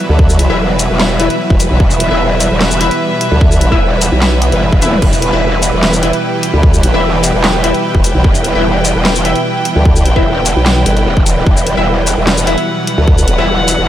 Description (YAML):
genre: heavy wobble dubstep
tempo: 149 BPM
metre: 4/4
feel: half-time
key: E minor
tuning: A4 = 441 Hz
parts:
  - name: supersaw chords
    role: sustained chords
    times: 0.0-13.9 s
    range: B2 to G4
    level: -17 LUFS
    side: equal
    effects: sidechain pumping
  - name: dark studio string section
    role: texture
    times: 0.0-13.9 s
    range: E4 to G5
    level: -18 LUFS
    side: right 1 dB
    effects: sidechain pumping
  - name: formant-sweep wobble bass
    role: bass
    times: 0.1-13.4 s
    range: E1 to D2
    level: -11 LUFS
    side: equal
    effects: chorus, overdrive
  - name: electronic kick drum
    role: drums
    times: 0.2-13.2 s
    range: none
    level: -12 LUFS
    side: equal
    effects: none
  - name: dubstep drum kit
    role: drums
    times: 0.3-13.8 s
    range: crash cymbal, handclaps, hi-hat, shaker, snare drum, toms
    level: -16 LUFS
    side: left 1 dB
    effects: none
  - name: orchestra-hit-like synth stab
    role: stabs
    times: 0.5-13.5 s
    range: E4 to E5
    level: -20 LUFS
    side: left 3 dB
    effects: built-in reverb, digital delay
  - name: growl bass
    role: bass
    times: 0.5-13.9 s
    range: E1 to G1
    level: -15 LUFS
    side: equal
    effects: chorus, overdrive
room: light reverb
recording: none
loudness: -9 LUFS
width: side -12 dB against mid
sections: 0.0-13.9 A section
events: drum fill 4.8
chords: 0.0 Em